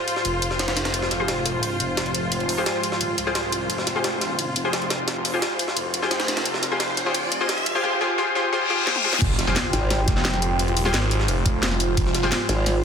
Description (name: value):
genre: dark technical drum and bass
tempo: 174 BPM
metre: 4/4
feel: straight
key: F minor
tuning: A4 = 441 Hz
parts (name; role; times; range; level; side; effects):
- dark analog pad; sustained chords; 0.0-12.8 s; Ab3 to G5; -32 LUFS; right 2 dB; chorus, phaser, sidechain pumping
- orchestra-hit-like synth stab; stabs; 0.0-12.8 s; F4 to C5; -26 LUFS; left 2 dB; built-in reverb, cassette tape, dub echo
- muted studio string section; texture; 0.0-12.8 s; F4 to C5; -29 LUFS; left 1 dB; sidechain pumping
- drum and bass drum kit; drums; 0.1-12.7 s; crash cymbal, hi-hat, snare drum, toms; -26 LUFS; left 1 dB; none
- jungle sampler-style drum kit; drums; 0.1-12.7 s; hi-hat, ride cymbal, snare drum; -29 LUFS; right 1 dB; high-pass filter on cymbals, high-pass filter on snare, high-pass filter on hats, high-pass filter on room
- phased detuned saw bass; bass; 0.2-12.3 s; Eb1 to C2; -27 LUFS; equal; phaser, tube saturation
- riser, reverse cymbal and impact; sound effects; 5.6-10.6 s; none; -28 LUFS; left 1 dB; none
- electronic kick drum; drums; 9.2-12.0 s; none; -22 LUFS; equal; none
- formant-sweep wobble bass; bass; 9.7-10.1, 12.5-12.8 s; Ab1; -22 LUFS; equal; chorus
room: moderate lush hall reverb, RT60 1.6 s, digital ambience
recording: dense, heavily limited modern master, high-pass filter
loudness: -20 LUFS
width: side -7 dB against mid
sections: 0.0-9.2 A section; 9.2-12.8 B section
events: build-up 0.0-9.2; filter sweep on analog synth pad 0.0-9.2; riser 5.6-7.8; reverse cymbal 8.6-9.2; drum fill 8.9-9.2; drop 9.2-12.8; impact 9.2-10.6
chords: 0.0 Fmadd9